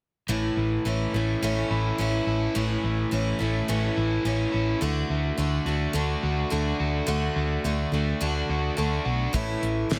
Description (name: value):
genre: folk rock and heartland rock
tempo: 106 BPM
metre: 4/4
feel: straight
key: A major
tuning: A4 = 440 Hz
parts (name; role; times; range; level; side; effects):
- picked steel-string acoustic guitar; accompaniment; 0.3-10.0 s; A2 to F#4; -30 LUFS; equal; plate reverb
- crunchy overdriven guitar; riff; 0.3-10.0 s; A2 to F#4; -33 LUFS; equal; none
- hollow-body short-scale fingered electric bass; bass; 0.3-10.0 s; A1 to D2; -30 LUFS; equal; none
- damped 70s drum kit; drums; 9.3-10.0 s; hi-hat, kick drum, snare drum; -29 LUFS; equal; none
room: light reverb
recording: none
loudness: -26 LUFS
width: mono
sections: 0.3-10.0 A section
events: none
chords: 0.3 A; 4.8 D; 9.3 A